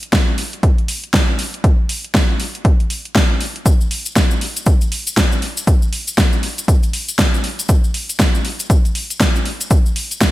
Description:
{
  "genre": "house",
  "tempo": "119 BPM",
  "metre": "4/4",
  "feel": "swing 60% on 16ths",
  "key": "none",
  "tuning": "none",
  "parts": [
    { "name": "deep house drum kit", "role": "drums", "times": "0.0-10.3 s", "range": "hi-hat, snare drum", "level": "-19 LUFS", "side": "equal", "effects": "overdrive, small room reverb, gated reverb" },
    { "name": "electronic kick drum", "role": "drums", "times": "0.1-10.3 s", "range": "none", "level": "-14 LUFS", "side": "equal", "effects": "overdrive, small room reverb" },
    { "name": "cabasa", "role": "percussion", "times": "3.7-10.3 s", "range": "none", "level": "-25 LUFS", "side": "left 3 dB", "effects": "none" }
  ],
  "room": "little or no reverb",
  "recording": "bright 1980s-style digital production",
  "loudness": "-14 LUFS",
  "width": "side -17 dB against mid",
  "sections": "0.0-10.3 A section",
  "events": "none",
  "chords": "none"
}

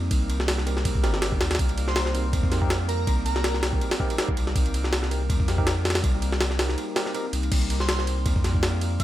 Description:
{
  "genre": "drum and bass, jungle",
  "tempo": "162 BPM",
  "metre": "4/4",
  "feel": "swing 55% on 16ths",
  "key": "C minor",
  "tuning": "A4 = 440 Hz",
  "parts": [
    { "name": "warbly tape-like pad", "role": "sustained chords", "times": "0.0-9.0 s", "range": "G3 to Bb4", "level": "-33 LUFS", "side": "equal", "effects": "chorus, built-in reverb, vintage 12-bit sampler grit" },
    { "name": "saturated sub bass", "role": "bass", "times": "0.0-9.0 s", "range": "G1 to F2", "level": "-26 LUFS", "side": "equal", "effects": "none" },
    { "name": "jungle sampler-style drum kit", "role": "drums", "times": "0.1-9.0 s", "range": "crash cymbal, kick drum, ride cymbal, snare drum", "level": "-25 LUFS", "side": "equal", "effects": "none" },
    { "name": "tine electric piano", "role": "stabs", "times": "0.7-7.2 s", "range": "C4 to Bb4", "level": "-34 LUFS", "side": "right 2 dB", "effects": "fast stereo tremolo, dub echo" },
    { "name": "airy dreamy lead", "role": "melody", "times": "1.9-3.5, 7.8-9.0 s", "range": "Bb4 to F5", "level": "-33 LUFS", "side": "right 1 dB", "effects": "chorus, dub echo" }
  ],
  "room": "digital ambience",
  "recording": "none",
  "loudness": "-22 LUFS",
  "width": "side -14 dB against mid",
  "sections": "0.0-7.5 A section; 7.5-9.0 A section",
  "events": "drop 0.0-7.5, 7.5-9.0; break 6.8-7.5",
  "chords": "0.0 Cm7"
}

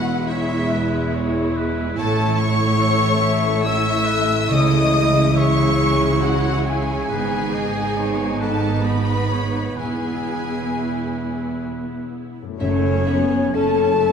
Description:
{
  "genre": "cinematic, emotional film score for orchestra",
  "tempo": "63-73 BPM",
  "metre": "3/4",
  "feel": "rubato",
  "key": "F# dorian",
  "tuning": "A4 = 437 Hz",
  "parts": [
    { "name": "rich studio violin section", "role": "melody", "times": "0.0-14.1 s", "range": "E5 to E6", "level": "-27 LUFS", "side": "left 2 dB", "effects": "none" },
    { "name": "clear oboe", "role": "second line", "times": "0.0-12.1 s", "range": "A4 to E5", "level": "-32 LUFS", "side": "equal", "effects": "none" },
    { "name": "silver concert flute", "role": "second line", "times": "0.0-14.1 s", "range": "C#5 to E6", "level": "-28 LUFS", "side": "left 2 dB", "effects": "none" },
    { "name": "warm symphonic violin section", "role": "second line", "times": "0.0-14.1 s", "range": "E4 to A5", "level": "-27 LUFS", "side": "left 2 dB", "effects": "none" },
    { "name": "rich symphonic viola section", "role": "accompaniment", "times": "0.0-14.1 s", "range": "G#3 to E4", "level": "-26 LUFS", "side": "right 1 dB", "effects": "none" },
    { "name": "mellow French horn section", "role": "sustained chords", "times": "0.0-14.1 s", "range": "G#3 to A4", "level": "-24 LUFS", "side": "left 3 dB", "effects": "none" },
    { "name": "concert harp", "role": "arpeggios", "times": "0.0-14.1 s", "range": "E2 to C#5", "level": "-27 LUFS", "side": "left 3 dB", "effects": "none" },
    { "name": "clear studio cello section", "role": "bass", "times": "0.0-14.1 s", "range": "E2 to C#3", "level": "-26 LUFS", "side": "right 3 dB", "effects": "none" },
    { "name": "warm symphonic double bass section", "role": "bass", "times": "0.0-14.1 s", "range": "E1 to C#2", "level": "-27 LUFS", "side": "right 5 dB", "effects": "none" },
    { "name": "timpani", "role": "percussion", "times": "4.5-5.8, 12.6-14.0 s", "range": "F#2 to C#3", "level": "-26 LUFS", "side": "right 1 dB", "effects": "none" }
  ],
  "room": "wet scoring stage reverb, RT60 1.8 s",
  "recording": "none",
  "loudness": "-17 LUFS",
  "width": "side -7 dB against mid",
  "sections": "0.0-12.6 A section; 12.6-14.1 B section",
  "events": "none",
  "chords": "0.0 E; 2.0 A; 4.5 C#madd9; 7.1 G#m; 9.8 E; 12.6 F#m7"
}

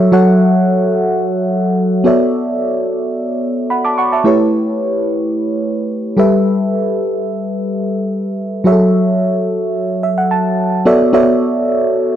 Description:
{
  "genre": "amapiano",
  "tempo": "109 BPM",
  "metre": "4/4",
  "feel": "straight",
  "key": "B minor",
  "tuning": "A4 = 440 Hz",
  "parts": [
    { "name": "mellow FM electric piano", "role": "solo", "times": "0.0-12.2 s", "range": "F#3 to D6", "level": "-12 LUFS", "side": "equal", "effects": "chorus" }
  ],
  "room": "digital ambience",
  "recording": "dry, gritty hardware recording",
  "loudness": "-12 LUFS",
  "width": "side -10 dB against mid",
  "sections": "0.0-2.1 A section; 2.1-10.9 B section; 10.9-12.2 A section",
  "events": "drop 0.0-2.1, 10.9-12.2; FM electric piano fill 9.8-10.9",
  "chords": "0.0 F#m7; 2.1 Bm11; 4.3 A7; 6.2 G69; 8.7 F#m7; 10.9 Bm11"
}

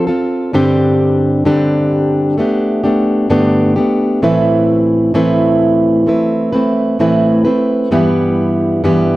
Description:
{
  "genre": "pop",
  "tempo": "65 BPM",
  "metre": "4/4",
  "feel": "straight",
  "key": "unclear",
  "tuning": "A4 = 444 Hz",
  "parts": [
    { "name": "fingerpicked plugged-in steel-string acoustic guitar", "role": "solo", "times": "0.0-9.2 s", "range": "G2 to B4", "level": "-11 LUFS", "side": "equal", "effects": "none" }
  ],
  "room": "light reverb",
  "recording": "dry, close 1970s-style studio recording, lossy compression artefacts",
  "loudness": "-11 LUFS",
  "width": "side -17 dB against mid",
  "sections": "0.0-9.2 A section",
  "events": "none",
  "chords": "0.0 F; 0.5 Gsus4; 2.4 Gadd9; 4.2 Amadd9; 7.9 Em/G"
}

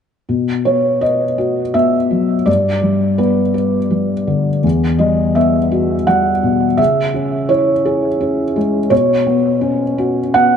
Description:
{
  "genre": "neoclassical minimalist piano",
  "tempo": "83 BPM",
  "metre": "3/4",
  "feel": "rubato",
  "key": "B major",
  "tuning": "A4 = 440 Hz",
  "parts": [
    { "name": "felt-muted upright piano", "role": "solo", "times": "0.3-10.6 s", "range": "E2 to F#5", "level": "-13 LUFS", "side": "equal", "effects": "analog delay" }
  ],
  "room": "moderate spring reverb, RT60 2.6 s",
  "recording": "nothing above 11.0 kHz",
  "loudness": "-13 LUFS",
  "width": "side -7 dB against mid",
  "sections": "0.3-10.6 A section",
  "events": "none",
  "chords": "0.3 B5; 2.5 G; 4.6 Emadd9; 6.8 C#m; 8.9 Bsus2"
}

